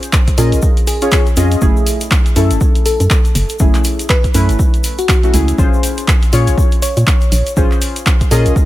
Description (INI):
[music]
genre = deep house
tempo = 121 BPM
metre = 4/4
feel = swing 59% on 16ths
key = unclear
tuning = A4 = 440 Hz
[part]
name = deep mellow chord stab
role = stabs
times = 0.0-8.7 s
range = A3 to Eb5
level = -19 LUFS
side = left 1 dB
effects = chorus, sidechain pumping, dub echo
[part]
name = punchy analog drum machine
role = drums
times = 0.0-8.5 s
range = handclaps, hi-hat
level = -20 LUFS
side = equal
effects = none
[part]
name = tube shaker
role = percussion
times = 0.0-8.7 s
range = none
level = -27 LUFS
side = left 2 dB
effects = none
[part]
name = electronic kick drum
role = drums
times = 0.1-8.7 s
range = none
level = -13 LUFS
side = equal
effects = none
[part]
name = bell-like FM electric piano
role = melody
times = 0.4-8.5 s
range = Gb4 to Db5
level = -22 LUFS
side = left 1 dB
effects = chorus, dub echo
[part]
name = organ-like FM bass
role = bass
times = 0.4-8.5 s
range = Gb1 to Bb2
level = -13 LUFS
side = equal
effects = sidechain pumping
[sound]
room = little or no reverb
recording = none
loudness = -10 LUFS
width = side -15 dB against mid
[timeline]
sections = 0.0-8.7 A section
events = none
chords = 0.0 Bbm9; 1.6 Gbm9; 5.6 Bbm9